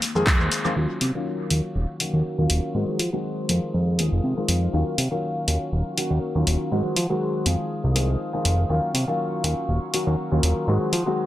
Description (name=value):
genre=filtered disco house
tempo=121 BPM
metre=4/4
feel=swing 53% on 16ths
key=Eb dorian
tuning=A4 = 441 Hz
part: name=punchy analog drum machine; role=drums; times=0.0-11.0 s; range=handclaps, hi-hat, shaker, woodblock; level=-25 LUFS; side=equal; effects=sidechain pumping on hats, sidechain pumping on perc, dub echo
part: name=tube shaker and congas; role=percussion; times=0.0-0.7 s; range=none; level=-34 LUFS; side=left 3 dB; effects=sidechain pumping on perc, low-pass filter on perc, dub echo
part: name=warm concert grand piano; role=accompaniment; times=0.2-11.3 s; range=Eb3 to Ab4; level=-26 LUFS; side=left 1 dB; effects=phaser, vintage 12-bit sampler grit, sidechain pumping, low-pass filter
part: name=fat analog bass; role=bass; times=0.2-11.0 s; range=Eb1 to F3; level=-22 LUFS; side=equal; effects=tube saturation, sidechain pumping, low-pass filter
part: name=rich studio string section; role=sustained chords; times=0.8-11.3 s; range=Gb3 to Eb6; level=-37 LUFS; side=equal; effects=sidechain pumping, low-pass filter
room=light reverb, small room ambience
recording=echo-heavy mix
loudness=-21 LUFS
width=side -14 dB against mid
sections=0.8-11.3 A section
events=band accent 0.3; filter sweep 0.8-11.3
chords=0.0 Fm7; 0.8 Ebm9; 2.7 Ab7; 3.5 Fm7; 4.7 Ebm9; 6.7 Ab7; 7.5 Fm7; 8.7 Ebm9; 10.7 Ab7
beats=0.27 | 0.77 1.26 1.76 2.25 | 2.75 3.24 3.74 4.24 | 4.73 5.23 5.72 6.22 | 6.71 7.21 7.71 8.20 | 8.70 9.20 9.69 10.19 | 10.68 11.18